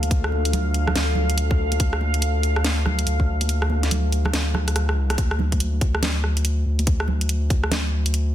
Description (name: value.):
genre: deep dubstep.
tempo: 142 BPM.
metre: 4/4.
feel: swing 62% on 16ths, half-time.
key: D minor.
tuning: A4 = 441 Hz.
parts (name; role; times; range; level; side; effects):
deep dark ambient pad; sustained chords; 0.0-5.1 s; D4 to F5; -28 LUFS; equal; chorus, built-in reverb, vintage 12-bit sampler grit.
saturated sub bass; bass; 0.0-8.3 s; D2; -22 LUFS; equal; none.
garage drum kit; drums; 0.0-8.2 s; hi-hat, rim click, snare drum; -26 LUFS; equal; soft clipping on snare, studio reverb.
congas; percussion; 0.0-7.8 s; none; -32 LUFS; right 5 dB; dub echo.
electronic kick drum; drums; 0.1-7.6 s; none; -21 LUFS; equal; studio reverb.
room: little or no reverb.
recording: dense, heavily limited modern master.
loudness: -19 LUFS.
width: side -12 dB against mid.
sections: 0.0-5.2 A section; 5.2-8.3 A section.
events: drop 0.0-5.2, 5.2-8.3; kick drops out 3.5-5.2; drum fill 4.5-5.2; band accent 5.1.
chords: 0.0 Dm; 5.2 N.C..